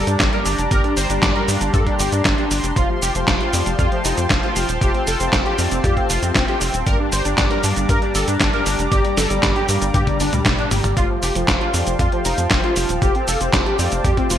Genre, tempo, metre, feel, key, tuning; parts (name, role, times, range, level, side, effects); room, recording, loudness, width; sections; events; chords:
italo disco; 117 BPM; 4/4; straight; G minor; A4 = 441 Hz
wide unison lead; melody; 0.0-14.4 s; F3 to C5; -23 LUFS; equal; ensemble chorus, digital delay
warm analog pad; sustained chords; 0.0-14.4 s; G3 to D6; -25 LUFS; equal; chorus
analog synth brass; stabs; 0.0-14.4 s; G2 to F5; -27 LUFS; left 3 dB; chorus
tight sequencer bass; bass; 0.0-14.4 s; Eb1 to G2; -23 LUFS; equal
dusty soul sampler-style drum kit; drums; 0.1-14.4 s; cabasa, handclaps, hi-hat, snare drum, toms; -21 LUFS; equal; small room reverb, gated reverb
electronic kick drum; drums; 0.2-14.3 s; -21 LUFS; equal; small room reverb
light reverb; bright 1980s-style digital production; -16 LUFS; side -10 dB against mid
0.0-14.4 A section
drum fill 9.9-11.0
0.0 Gm; 2.8 Fadd9; 6.9 Gm; 11.0 Fadd9